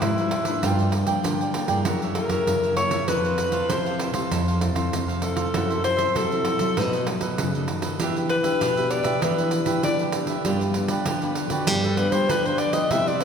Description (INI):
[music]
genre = samba and choro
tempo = 98 BPM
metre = 4/4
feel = straight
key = unclear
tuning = A4 = 442 Hz
[part]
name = breathy alto saxophone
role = melody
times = 0.0-13.2 s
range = E4 to E5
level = -25 LUFS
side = left 2 dB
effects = none
[part]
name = cavaquinho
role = accompaniment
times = 0.0-13.2 s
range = D4 to G5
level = -30 LUFS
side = right 4 dB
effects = none
[part]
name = nylon-string guitar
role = accompaniment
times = 0.0-13.2 s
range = F#2 to A4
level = -30 LUFS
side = left 2 dB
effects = none
[part]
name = nylon-string guitar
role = bass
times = 0.0-13.2 s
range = F2 to G3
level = -27 LUFS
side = equal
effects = none
[part]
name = pandeiro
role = percussion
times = 0.0-13.2 s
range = none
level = -28 LUFS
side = right 3 dB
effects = none
[sound]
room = wet concert hall reverb, RT60 2.1 s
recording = recorded in a church or concert hall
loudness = -21 LUFS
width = side -7 dB against mid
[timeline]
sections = 0.0-13.2 A section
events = alto saxophone solo 0.0-13.2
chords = 0.0 Cmaj7; 0.6 Gm7; 1.9 F#9; 3.1 Fmaj7; 5.5 F#m7b5; 6.8 B7; 8.0 Em7; 10.5 G7